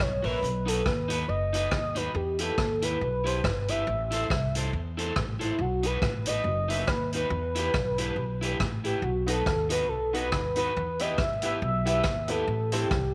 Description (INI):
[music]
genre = ska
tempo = 139 BPM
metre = 4/4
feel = swing 57% on 8ths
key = E harmonic minor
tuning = A4 = 440 Hz
[part]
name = reedy FM lead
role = melody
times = 0.0-13.1 s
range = E4 to E5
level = -32 LUFS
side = equal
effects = chorus, tremolo
[part]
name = upright bass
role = bass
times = 0.0-13.1 s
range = F#1 to E2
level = -34 LUFS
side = equal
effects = none
[part]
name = street-band drum kit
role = drums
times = 0.0-13.0 s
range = hi-hat, kick drum, rim click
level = -34 LUFS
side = equal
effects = none
[part]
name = electric guitar at the edge of break-up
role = accompaniment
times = 0.2-12.9 s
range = D#4 to E5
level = -37 LUFS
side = equal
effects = subtle chorus, slapback echo
[part]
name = bright upright piano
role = stabs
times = 9.3-13.0 s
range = B3 to C5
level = -38 LUFS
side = equal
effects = none
[sound]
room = light reverb, studio reverb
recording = none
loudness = -28 LUFS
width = mono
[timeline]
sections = 0.0-13.1 A section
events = none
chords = 0.4 B; 2.1 Em; 3.9 Am; 5.6 B; 7.3 Em; 9.0 B; 10.8 Em; 12.5 Am